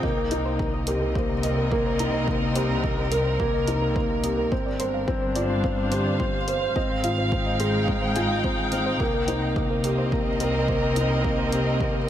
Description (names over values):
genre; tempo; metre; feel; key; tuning
piano and strings electronica; 107 BPM; 4/4; straight; C minor; A4 = 440 Hz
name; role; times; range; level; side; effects
dark chamber string section; sustained chords; 0.0-12.1 s; C3 to G5; -28 LUFS; equal; sidechain pumping
soft round pluck; arpeggios; 0.0-12.0 s; Bb4 to F6; -33 LUFS; right 3 dB; chorus, sidechain pumping, ping-pong delay
felt-muted upright piano; riff; 0.0-12.1 s; Bb3 to C5; -26 LUFS; left 1 dB; ping-pong delay
warm studio double bass section; bass; 0.0-12.1 s; G1 to C2; -29 LUFS; equal; sidechain pumping
electronic kick drum; drums; 0.0-11.9 s; none; -30 LUFS; equal; small room ambience
electronic hi-hat; drums; 0.3-11.6 s; none; -34 LUFS; equal; small room ambience
room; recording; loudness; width
light reverb, small room ambience; none; -22 LUFS; side -11 dB against mid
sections
0.0-12.1 A section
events
none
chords
0.0 Cm7; 4.5 G7sus4; 6.8 Fm7/Ab; 9.0 Cm7